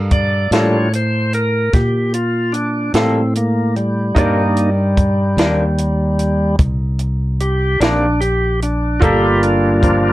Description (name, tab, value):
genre	slow blues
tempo	49 BPM (dotted quarters)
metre	12/8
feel	straight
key	G minor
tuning	A4 = 440 Hz
part	bright grand piano	accompaniment	0.0-10.1 s	Eb4 to F5	-26 LUFS	right 3 dB	none
part	fingered electric bass	bass	0.0-10.1 s	G1 to Bb2	-18 LUFS	equal	none
part	bright tonewheel organ	sustained chords	0.1-10.1 s	F3 to D5	-17 LUFS	equal	slow rotary speaker
part	compact cocktail drum kit	drums	0.1-10.0 s	hi-hat, kick drum, snare drum	-18 LUFS	equal	none
part	electric guitar through a small old amp	accompaniment	0.5-9.3 s	C3 to A4	-20 LUFS	left 2 dB	harmonic tremolo
room	light reverb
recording	worn, warbling old tape, cassette tape, warbly pitch drift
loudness	-13 LUFS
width	side -16 dB against mid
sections	0.0-10.1 A section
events	tonewheel organ solo 0.0-10.1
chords	0.0 Gm9; 4.2 Cm9; 9.0 Gm9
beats	0.52 1.73 2.94 | 4.16 5.37 6.59 7.80 | 9.02